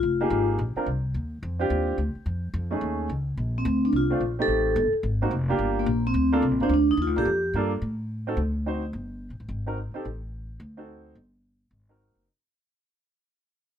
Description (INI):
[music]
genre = jazz, small-group swing and bop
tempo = 216 BPM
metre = 4/4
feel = swing 61% on 8ths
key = G minor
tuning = A4 = 438 Hz
[part]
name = vibraphone with medium mallets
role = melody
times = 0.0-0.5, 3.6-7.5 s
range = Bb3 to A4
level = -23 LUFS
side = equal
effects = none
[part]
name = upright bass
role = bass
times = 0.0-12.3 s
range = F1 to A2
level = -28 LUFS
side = equal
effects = none
[part]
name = clear baby grand piano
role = accompaniment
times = 0.2-12.3 s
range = A3 to C5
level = -28 LUFS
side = right 2 dB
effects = none
[sound]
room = light reverb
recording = none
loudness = -23 LUFS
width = side -9 dB against mid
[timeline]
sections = 0.0-7.8 A section; 7.8-12.3 B section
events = fade-out 7.8-12.3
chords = 0.0 Fm11; 0.6 Bbadd9; 1.1 Ebmaj13; 2.3 F7alt; 3.4 Bbmaj9; 4.5 Am7b5; 5.0 Ab9; 5.6 Gm9; 7.8 Adim; 8.4 D7b9; 8.9 Gm; 9.5 Ab7; 10.0 N.C.; 10.6 D7b9; 11.2 N.C.; 11.7 Ab7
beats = | 0.03 0.31 0.59 0.87 | 1.15 1.43 1.70 1.98 | 2.26 2.54 2.82 3.09 | 3.37 3.65 3.93 4.21 | 4.49 4.76 5.04 5.32 | 5.60 5.88 6.15 6.43 | 6.71 6.99 7.26 7.54 | 7.82 8.10 8.38 8.65 | 8.93 9.21 9.49 9.77 | 10.05 10.32 10.60 10.88 | 11.16 11.44 11.71 11.99